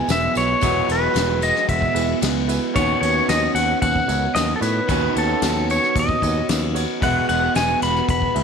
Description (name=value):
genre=folk rock and heartland rock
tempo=112 BPM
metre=4/4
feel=straight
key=E major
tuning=A4 = 440 Hz
part: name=pedal steel guitar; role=melody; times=0.0-8.4 s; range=A4 to B5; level=-21 LUFS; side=equal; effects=none
part: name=clear upright piano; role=accompaniment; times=0.0-8.4 s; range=D#4 to E5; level=-33 LUFS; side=right 12 dB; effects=none
part: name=picked acoustic archtop guitar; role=accompaniment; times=0.0-8.4 s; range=E2 to F#4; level=-30 LUFS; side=left 11 dB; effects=none
part: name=electric guitar through a small old amp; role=riff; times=0.0-8.4 s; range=E2 to F#4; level=-24 LUFS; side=right 3 dB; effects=wide subtle chorus
part: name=picked electric bass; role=bass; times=0.1-8.4 s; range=E1 to A2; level=-24 LUFS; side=equal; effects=none
part: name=soft brush drum kit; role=drums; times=0.1-8.4 s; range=crash cymbal, kick drum, ride cymbal, snare drum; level=-26 LUFS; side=left 4 dB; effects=none
part: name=tambourine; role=percussion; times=0.1-8.2 s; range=none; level=-36 LUFS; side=right 16 dB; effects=none
room=light reverb, studio ambience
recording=1960s-style stereo with parts hard left and right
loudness=-17 LUFS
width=side -6 dB against mid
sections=0.0-8.4 A section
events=none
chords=0.0 Eadd9; 2.8 Badd9; 7.0 Eadd9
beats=0.09 | 0.62 1.15 1.69 2.22 | 2.75 3.29 3.82 4.35 | 4.89 5.42 5.95 6.49 | 7.02 7.55 8.09